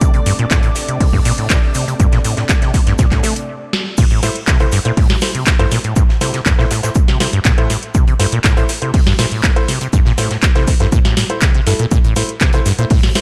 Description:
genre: acid house.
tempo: 121 BPM.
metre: 4/4.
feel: straight.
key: A phrygian.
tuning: A4 = 441 Hz.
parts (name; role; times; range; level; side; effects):
lush unison pad; sustained chords; 0.0-3.5 s; C3 to D5; -28 LUFS; equal; chorus, sidechain pumping.
acid bass, saw; riff; 0.0-13.1 s; G2 to A3; -21 LUFS; equal; tube saturation, subtle chorus, delay.
booming analog drum machine; drums; 0.0-13.2 s; crash cymbal, handclaps, hi-hat, snare drum; -22 LUFS; equal; none.
electronic kick drum; drums; 0.0-13.0 s; none; -16 LUFS; equal; none.
tight metal drum kit; drums; 0.0-13.2 s; hi-hat, shaker, snare drum; -32 LUFS; equal; none.
clear grand piano; stabs; 4.2-13.2 s; A3 to C5; -26 LUFS; equal; delay.
room: studio reverb.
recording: none.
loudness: -14 LUFS.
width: mono.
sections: 0.0-4.0 A section; 4.0-13.2 B section.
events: stop 3.5-4.0; drum fill 3.7; band accent 3.7; drop 4.0-13.2.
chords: 0.0 Am.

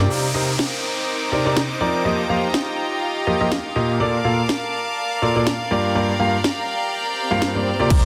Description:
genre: piano house.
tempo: 123 BPM.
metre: 4/4.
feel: swing 56% on 16ths.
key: G minor.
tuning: A4 = 440 Hz.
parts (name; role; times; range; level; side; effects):
clear baby grand piano; riff; 0.0-8.1 s; G2 to F5; -23 LUFS; equal; sidechain pumping, low-pass filter.
organ-like FM bass; bass; 0.0-0.1, 7.9-8.1 s; C2; -22 LUFS; equal; sidechain pumping.
rich chamber string section; texture; 0.0-8.1 s; Eb4 to D6; -28 LUFS; equal; sidechain pumping.
clear studio violin section; sustained chords; 0.1-8.1 s; C4 to D6; -30 LUFS; equal; sidechain pumping, low-pass filter.
downlifter, swell and sub drop; sound effects; 0.1-8.1 s; none; -30 LUFS; equal; none.
house drum kit; drums; 0.6-8.0 s; crash cymbal, snare drum; -26 LUFS; equal; none.
electronic kick drum; drums; 7.9-8.0 s; none; -16 LUFS; equal; none.
room: moderate plate reverb, RT60 1.3 s, small room reverb.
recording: dense, heavily limited modern master.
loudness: -21 LUFS.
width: mono.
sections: 0.1-7.9 A section.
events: filter sweep on grand piano 0.1-7.9; swell 7.2-7.9.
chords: 0.1 Cm9; 2.1 F9sus4; 4.0 Bbmaj7; 5.7 Gm7.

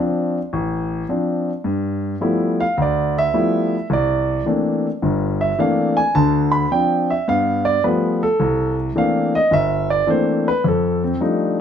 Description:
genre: solo jazz.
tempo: 107 BPM.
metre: 4/4.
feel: swing 68% on 8ths.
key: C major.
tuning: A4 = 441 Hz.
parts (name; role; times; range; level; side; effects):
warm concert grand piano; solo; 0.0-11.6 s; G1 to B5; -16 LUFS; equal; none.
room: moderate club reverb, RT60 0.8 s.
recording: none.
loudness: -16 LUFS.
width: side -8 dB against mid.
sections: 0.0-8.4 A section; 8.4-11.6 A section.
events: grand piano solo 0.0-11.6.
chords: 0.0 Dm7; 1.7 G13; 3.9 C13; 6.1 Dm7; 7.3 G9; 8.4 C13; 10.6 F13.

